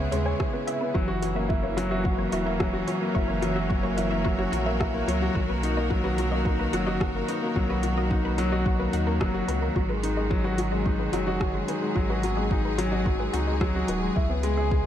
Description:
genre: piano and strings electronica.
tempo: 109 BPM.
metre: 4/4.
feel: straight.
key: G# minor.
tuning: A4 = 439 Hz.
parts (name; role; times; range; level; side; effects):
clear symphonic string section; sustained chords; 0.0-14.9 s; C#3 to A#4; -32 LUFS; right 2 dB; none.
wide unison pluck; arpeggios; 0.0-14.8 s; F#4 to G#5; -35 LUFS; left 1 dB; sidechain pumping, digital delay.
warm upright piano; riff; 0.0-14.9 s; F#3 to C#5; -27 LUFS; left 1 dB; digital delay.
warm sub bass; bass; 0.0-14.9 s; D#1 to D#2; -30 LUFS; equal; sidechain pumping.
deep house drum kit; drums; 0.1-14.5 s; hi-hat, rim click; -36 LUFS; equal; overdrive, studio reverb.
electronic kick drum; drums; 0.4-14.8 s; none; -28 LUFS; equal; overdrive, studio reverb.
room: moderate recital hall reverb, RT60 1.6 s.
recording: dark, warm production.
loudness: -23 LUFS.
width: side -10 dB against mid.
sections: 0.0-14.9 A section.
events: none.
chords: 0.0 C#m7; 1.0 F#7; 5.4 Bmaj7; 9.8 G#m7; 14.2 C#m7.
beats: 0.40 | 0.95 1.50 2.05 2.60 | 3.15 3.70 4.25 4.80 | 5.36 5.91 6.46 7.01 | 7.56 8.11 8.66 9.21 | 9.76 10.31 10.86 11.41 | 11.96 12.51 13.06 13.61 | 14.16 14.71.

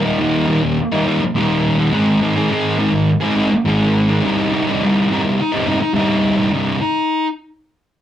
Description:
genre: rock.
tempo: 104 BPM.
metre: 4/4.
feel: straight.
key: C minor.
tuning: A4 = 444 Hz.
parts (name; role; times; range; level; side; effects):
thick fuzz guitar; solo; 0.0-7.3 s; C2 to Ab4; -14 LUFS; equal; distortion.
room: moderate studio ambience, RT60 0.5 s.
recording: rough rehearsal-room recording, tube saturation.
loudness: -14 LUFS.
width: side -11 dB against mid.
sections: 0.0-6.5 A section; 6.5-8.0 B section.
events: none.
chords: 0.0 Eb; 1.9 Ab; 4.2 Cm.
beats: 0.19 0.77 1.35 | 1.92 2.50 3.08 3.65 | 4.23 4.80 5.38 5.95 | 6.53 7.10.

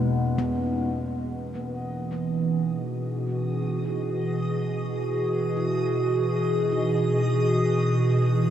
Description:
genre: ambient.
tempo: 52 BPM.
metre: 3/4.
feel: straight.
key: E lydian.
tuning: A4 = 440 Hz.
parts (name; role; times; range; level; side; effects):
warbly tape-like pad; sustained chords; 0.0-8.5 s; E2 to G#4; -23 LUFS; right 1 dB; chorus, built-in reverb, phaser.
handpan; arpeggios; 0.0-8.5 s; A#3 to E4; -34 LUFS; left 1 dB; diffuse ambient delay.
backwards swelling texture; texture; 2.8-8.5 s; D#5 to D#6; -39 LUFS; equal; built-in reverb, lush chorus.
room: wet huge ambient reverb, RT60 8.5 s.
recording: dreamy mix soaked in reverb.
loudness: -23 LUFS.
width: side -10 dB against mid.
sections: 1.0-8.5 A section.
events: fade-in on handpan 1.0-8.5; fade-in on synth texture 1.0-8.5.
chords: 0.0 Badd9/E; 1.0 Emaj7.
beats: | 0.96 2.12 3.28 | 4.43 5.57 6.71 | 7.85.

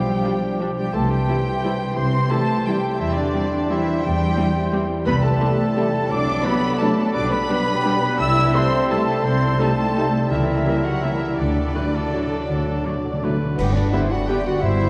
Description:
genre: classical, orchestral ballroom waltz.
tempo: 154-186 BPM.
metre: 3/4.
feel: rubato.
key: C major, G major from 5.1 s.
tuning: A4 = 440 Hz.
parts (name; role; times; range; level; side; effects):
warm studio violin section; melody; 0.0-14.9 s; B4 to E6; -31 LUFS; equal; none.
clear clarinet; second line; 0.0-14.9 s; B3 to E5; -32 LUFS; equal; none.
dark studio violin section; second line; 0.0-14.9 s; B3 to E5; -34 LUFS; equal; none.
silver concert flute; second line; 0.0-14.9 s; G4 to E6; -31 LUFS; equal; none.
warm cor anglais; second line; 0.0-14.4 s; G4 to D5; -36 LUFS; equal; none.
warm bassoon; accompaniment; 0.0-14.4 s; E3 to G3; -32 LUFS; equal; none.
concert harp; arpeggios; 0.0-14.9 s; G2 to C6; -29 LUFS; equal; none.
warm studio cello section; bass; 0.0-14.9 s; G2 to E4; -29 LUFS; equal; none.
warm studio double bass section; bass; 0.0-14.9 s; G1 to E2; -28 LUFS; equal; none.
clear studio viola section; accompaniment; 0.2-14.4 s; F#3 to E4; -34 LUFS; equal; none.
clear trombone section; sustained chords; 0.2-14.4 s; A2 to B3; -35 LUFS; equal; none.
mellow French horn section; sustained chords; 0.2-14.9 s; A3 to G4; -34 LUFS; equal; none.
cymbal swell, clash cymbals and concert bass drum; percussion; 11.4-14.3 s; none; -33 LUFS; equal; none.
timpani; percussion; 11.4-14.9 s; G2 to D3; -32 LUFS; equal; none.
room: wet cathedral reverb, RT60 4.6 s.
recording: dark, warm production.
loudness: -20 LUFS.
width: mono.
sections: 0.0-13.6 A section; 13.6-14.9 B section.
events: timpani fill 11.4-13.6; band accent 13.6-13.9.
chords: 0.0 G7/B; 0.9 C; 3.0 C/E; 5.1 Am7/C; 6.1 D7/C; 7.1 G/B; 8.2 Am7/C; 9.3 Am7b5/C; 10.3 C#dim7; 11.4 D; 13.6 G.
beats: 0.24 0.60 | 0.94 1.29 1.64 | 1.97 2.31 2.67 | 3.00 3.35 3.70 | 4.04 4.38 4.73 | 5.06 5.41 5.77 | 6.11 6.45 6.81 | 7.15 7.50 7.86 | 8.20 8.54 8.91 | 9.25 9.60 9.97 | 10.31 10.66 11.03 | 11.38 11.75 12.13 | 12.49 12.86 13.24 | 13.59 13.94 14.29 | 14.63.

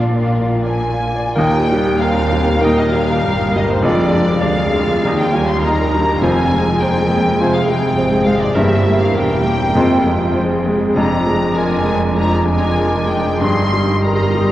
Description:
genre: classical, romantic movement for piano and orchestra.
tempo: 100 BPM.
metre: 4/4.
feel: uneven beats, rubato.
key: Eb major.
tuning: A4 = 440 Hz.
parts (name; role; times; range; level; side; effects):
clear baby grand piano; melody; 0.0-14.5 s; Eb2 to Eb5; -18 LUFS; equal; none.
rich symphonic violin section; melody; 0.0-14.5 s; F4 to C6; -26 LUFS; left 2 dB; none.
mellow hollow silver concert flute; second line; 0.0-14.5 s; C5 to C6; -24 LUFS; left 1 dB; none.
rich symphonic violin section; second line; 0.0-14.5 s; D4 to C6; -26 LUFS; left 1 dB; none.
warm studio viola section; accompaniment; 0.0-14.5 s; Ab3 to D5; -22 LUFS; right 1 dB; none.
clear symphonic double bass section; bass; 0.0-14.5 s; E1 to Eb2; -23 LUFS; right 1 dB; none.
rich symphonic cello section; bass; 0.0-14.5 s; D2 to Bb2; -22 LUFS; right 1 dB; none.
mellow clarinet; second line; 1.4-14.5 s; Eb4 to G4; -28 LUFS; equal; none.
warm oboe; second line; 1.4-14.5 s; Bb4 to Eb5; -31 LUFS; equal; none.
clear bassoon; accompaniment; 1.4-14.5 s; F3 to Bb3; -26 LUFS; equal; none.
mellow French horn section; sustained chords; 1.4-13.6 s; E3 to Eb4; -27 LUFS; left 1 dB; none.
timpani; percussion; 1.4-5.9 s; Eb3; -28 LUFS; equal; none.
room: wet cathedral reverb, RT60 6.2 s.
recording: worn, warbling old tape, cassette tape, warbly pitch drift.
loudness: -13 LUFS.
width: side -14 dB against mid.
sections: 0.0-1.4 A section; 1.4-14.5 B section.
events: none.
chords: 0.0 Bb; 1.4 Eb; 3.8 Ddim/F; 5.0 Eb; 6.2 Fm; 8.6 Edim/G; 9.8 Fm; 11.0 Bb7/F; 13.4 Eb/G.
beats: 0.65 | 1.36 2.01 2.62 3.24 | 3.85 4.44 5.04 5.63 | 6.22 6.81 7.39 7.97 | 8.56 9.16 9.76 10.37 | 10.97 11.57 12.16 12.77 | 13.42 14.04.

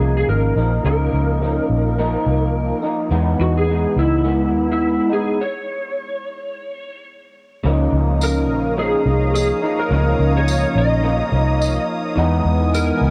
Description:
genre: indie pop, bedroom pop.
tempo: 106 BPM.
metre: 4/4.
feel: swing 55% on 16ths.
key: Db major.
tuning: A4 = 439 Hz.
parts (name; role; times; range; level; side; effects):
electric slide guitar; melody; 0.0-13.1 s; E4 to Eb5; -24 LUFS; equal; ensemble chorus, tape echo.
electric guitar through a small old amp; accompaniment; 0.0-13.1 s; Db3 to Eb4; -23 LUFS; equal; analog chorus, vibrato effect.
vintage muted fingered electric bass; bass; 0.0-13.1 s; Ab1 to E2; -21 LUFS; equal; tube saturation.
warm analog pad; sustained chords; 8.1-13.1 s; B3 to Eb6; -31 LUFS; equal; chorus.
tambourine; percussion; 8.2-12.9 s; none; -33 LUFS; equal; none.
room: light reverb.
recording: worn, warbling old tape, cassette tape, warbly pitch drift.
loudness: -18 LUFS.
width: mono.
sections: 0.0-7.6 A section; 7.6-13.1 B section.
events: stop 5.4-7.6.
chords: 0.0 Db69; 3.1 Emaj7; 5.4 N.C.; 7.6 Db69; 12.2 Emaj7.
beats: 0.29 | 0.85 1.42 1.99 2.55 | 3.12 3.68 4.25 4.82 | 5.38 5.95 6.51 7.08 | 7.65 8.21 8.78 9.34 | 9.91 10.47 11.04 11.61 | 12.17 12.74.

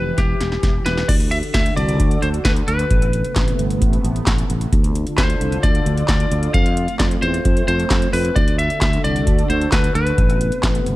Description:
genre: synth-pop.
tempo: 132 BPM.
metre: 4/4.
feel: straight.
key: unclear.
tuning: A4 = 442 Hz.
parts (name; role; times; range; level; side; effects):
lightly driven lead guitar; melody; 0.0-11.0 s; G4 to F5; -23 LUFS; left 1 dB; digital delay.
sweeping resonant pad; sustained chords; 0.0-11.0 s; C3 to A4; -25 LUFS; equal; chorus.
sustaining fretless electric bass; bass; 0.0-11.0 s; E1 to F2; -21 LUFS; equal; none.
electro analog drum machine; drums; 0.2-11.0 s; crash cymbal, handclaps, hi-hat, kick drum, snare drum; -19 LUFS; equal; none.
room: digital ambience.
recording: none.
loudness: -15 LUFS.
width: side -17 dB against mid.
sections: 0.0-1.1 A section; 1.1-11.0 B section.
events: drum fill 0.2-1.1.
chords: 0.0 Em; 1.1 D; 2.9 Amadd9; 4.7 Dm; 6.5 F; 8.4 D; 10.2 Amadd9.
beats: 0.18 0.63 | 1.09 1.54 2.00 2.45 | 2.91 3.36 3.82 4.27 | 4.72 5.18 5.63 6.09 | 6.54 7.00 7.45 7.91 | 8.36 8.82 9.27 9.72 | 10.18 10.63.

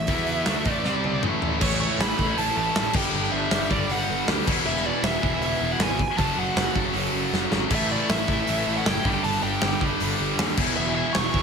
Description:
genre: hard rock.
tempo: 157 BPM.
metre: 4/4.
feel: straight.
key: A mixolydian.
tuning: A4 = 439 Hz.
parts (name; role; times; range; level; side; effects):
high-gain lead guitar; melody; 0.0-11.4 s; C#5 to C#6; -29 LUFS; right 2 dB; distortion, analog delay.
tonewheel organ; sustained chords; 0.0-11.4 s; E3 to D5; -39 LUFS; equal; none.
biting overdriven guitar; riff; 0.0-11.4 s; A2 to A4; -31 LUFS; left 1 dB; phaser.
distorted electric guitar; riff; 0.0-11.4 s; E2 to E4; -30 LUFS; right 14 dB; overdrive.
scooped high-gain guitar; riff; 0.0-11.4 s; E2 to E4; -29 LUFS; left 12 dB; distortion.
fuzz picked electric bass; bass; 0.0-11.4 s; E1 to E2; -31 LUFS; equal; overdrive.
big rock drum kit; drums; 0.1-11.4 s; crash cymbal, hi-hat, kick drum, snare drum, toms; -26 LUFS; equal; none.
room: light reverb.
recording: none.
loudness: -21 LUFS.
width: side -6 dB against mid.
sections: 0.0-1.6 A section; 1.6-11.4 B section.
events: drum fill 0.9-1.6, 7.3-7.7.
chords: 0.1 E5; 0.5 A5; 0.9 C5; 1.2 A5; 1.6 A; 3.0 G; 4.5 E; 6.2 F#m; 7.7 A; 9.1 G; 10.6 E.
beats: | 0.09 0.47 0.85 1.24 | 1.62 2.00 2.38 2.76 | 3.14 3.52 3.90 4.29 | 4.67 5.05 5.43 5.81 | 6.19 6.57 6.95 7.33 | 7.72 8.10 8.48 8.86 | 9.24 9.62 10.01 10.39 | 10.77 11.15.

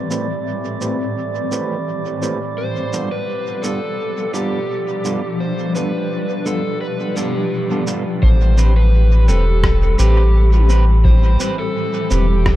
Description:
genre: ambient dub.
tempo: 85 BPM.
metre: 4/4.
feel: straight.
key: A minor.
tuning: A4 = 440 Hz.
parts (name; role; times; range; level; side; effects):
granular cloud pad; sustained chords; 0.0-12.6 s; A2 to G4; -24 LUFS; left 1 dB; built-in reverb.
drifting glass-harmonics texture; texture; 0.0-8.2 s; D5; -29 LUFS; right 8 dB; chorus, built-in reverb.
electric guitar at the edge of break-up; stabs; 0.1-12.3 s; G2 to B4; -25 LUFS; right 3 dB; low-pass filter, dub echo.
electronic cabasa and rim click; drums; 0.1-12.6 s; none; -28 LUFS; right 1 dB; small room ambience, dub echo.
overdriven slide guitar; melody; 2.6-12.6 s; G4 to C5; -24 LUFS; left 1 dB; dub echo.
soft dub sub bass; bass; 8.2-12.6 s; E1 to A1; -12 LUFS; equal; tube saturation.
electronic kick drum; drums; 8.2-12.6 s; none; -17 LUFS; equal; small room ambience.
room: little or no reverb.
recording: echo-heavy mix.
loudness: -15 LUFS.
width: side -15 dB against mid.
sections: 0.0-8.2 A section; 8.2-12.6 B section.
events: none.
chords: 0.0 Am7; 2.6 G7; 8.2 Am7.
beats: 0.46 1.17 1.87 | 2.58 3.28 3.99 4.70 | 5.40 6.11 6.81 7.52 | 8.22 8.93 9.64 10.34 | 11.05 11.76 12.46.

